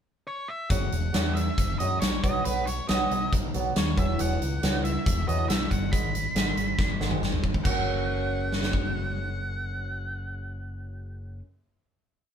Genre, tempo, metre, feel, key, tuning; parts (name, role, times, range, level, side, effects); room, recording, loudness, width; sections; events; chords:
quiet-loud alternative rock; 138 BPM; 4/4; straight; F# mixolydian; A4 = 442 Hz
octave-fuzz lead guitar; melody; 0.3-11.4 s; B4 to B5; -33 LUFS; equal; distortion
fingerpicked old ladder-braced acoustic guitar; arpeggios; 0.7-11.5 s; F#2 to F#4; -33 LUFS; right 2 dB
growling picked electric bass; bass; 0.7-11.4 s; E1 to F#2; -31 LUFS; equal; overdrive
big rock drum kit; drums; 0.7-8.8 s; crash cymbal, hi-hat, kick drum, snare drum, toms; -27 LUFS; equal
moderate studio reverb, RT60 0.8 s; band playing live in one room; -24 LUFS; side -8 dB against mid
0.0-0.7 pickup bar; 0.7-7.7 verse; 7.7-11.1 final chord
drum fill 6.8-7.7
0.0 N.C.; 0.7 F#5; 2.2 B; 4.0 Esus2; 5.9 G#m; 7.7 F#